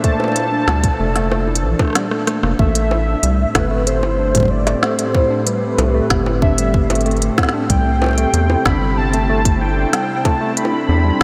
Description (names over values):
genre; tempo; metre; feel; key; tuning
IDM; 94 BPM; 4/4; straight; A minor; A4 = 440 Hz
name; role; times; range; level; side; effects
warm velvety synth lead; melody; 0.0-11.2 s; B4 to B5; -24 LUFS; equal; chorus, delay
warbly tape-like pad; sustained chords; 0.0-11.2 s; A2 to C5; -25 LUFS; equal; chorus, built-in reverb
tine electric piano; arpeggios; 0.0-11.2 s; E3 to E4; -25 LUFS; equal; medium tremolo, diffuse ambient delay
electronic kick drum; drums; 0.0-11.2 s; none; -19 LUFS; equal; none
organic electronic drum kit; drums; 0.0-11.2 s; bongos, hi-hat, rim click, snare drum; -25 LUFS; equal; diffuse ambient delay
rubbery square bass; bass; 0.7-11.2 s; F1 to E2; -20 LUFS; equal; tube saturation
twinkling granular texture; texture; 4.8-11.2 s; C4; -33 LUFS; equal; none
room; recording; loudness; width
wet huge ambient reverb, RT60 7.4 s; dreamy mix soaked in reverb; -16 LUFS; mono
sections
0.0-2.6 A section; 2.6-11.2 A section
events
drum fill 1.3-2.6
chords
0.0 Bbmaj7; 2.6 Am7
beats
| 0.04 0.68 1.32 1.95 | 2.59 3.23 3.87 4.51 | 5.15 5.78 6.42 7.06 | 7.70 8.34 8.97 9.61 | 10.25 10.89